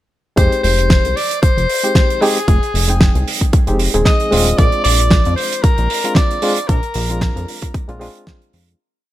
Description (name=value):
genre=nu-disco, nu disco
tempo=114 BPM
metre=4/4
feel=swing 55% on 16ths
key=F dorian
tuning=A4 = 440 Hz
part: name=warm tenor saxophone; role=melody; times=0.4-7.7 s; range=Ab4 to Eb5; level=-19 LUFS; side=left 2 dB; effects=ping-pong delay
part: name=barky reed electric piano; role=accompaniment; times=0.4-8.8 s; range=Ab3 to G5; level=-21 LUFS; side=equal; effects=overdrive, fast tremolo
part: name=chorused synth bass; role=bass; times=0.4-8.8 s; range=Eb1 to F2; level=-18 LUFS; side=equal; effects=none
part: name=damped 70s drum kit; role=drums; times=0.4-8.8 s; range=hi-hat, snare drum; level=-19 LUFS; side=right 2 dB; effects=none
part: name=electronic kick drum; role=drums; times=0.4-8.4 s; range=none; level=-14 LUFS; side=equal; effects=none
room=small room ambience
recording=none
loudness=-12 LUFS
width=side -14 dB against mid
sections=0.4-8.8 drop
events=drop 0.4-8.8; fade-out 6.0-8.8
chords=0.4 Fm7; 4.6 Bb7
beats=| 0.38 0.90 1.43 1.96 | 2.48 3.01 3.53 4.06 | 4.59 5.11 5.64 6.17 | 6.69 7.22 7.75 8.27